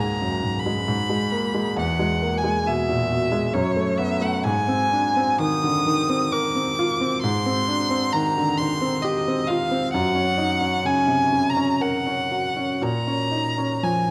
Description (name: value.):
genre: classical, impressionist duo for violin and grand piano.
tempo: 59-70 BPM.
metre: 3/4.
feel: rubato.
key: E lydian.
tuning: A4 = 440 Hz.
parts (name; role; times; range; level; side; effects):
bright violin; melody; 0.0-14.1 s; C#5 to Eb6; -26 LUFS; equal; none.
clear grand piano; accompaniment; 0.0-14.1 s; C#2 to Bb4; -25 LUFS; equal; none.
room: moderate concert hall reverb, RT60 1.9 s.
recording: dark, warm production, vinyl crackle.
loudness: -22 LUFS.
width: mono.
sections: 0.0-14.1 A section.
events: none.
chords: 0.0 C#5; 0.9 G#m; 1.8 E; 3.5 F#madd11; 4.4 Ab69; 7.2 Fm9/Ab; 9.9 Gb; 12.8 Bbm11.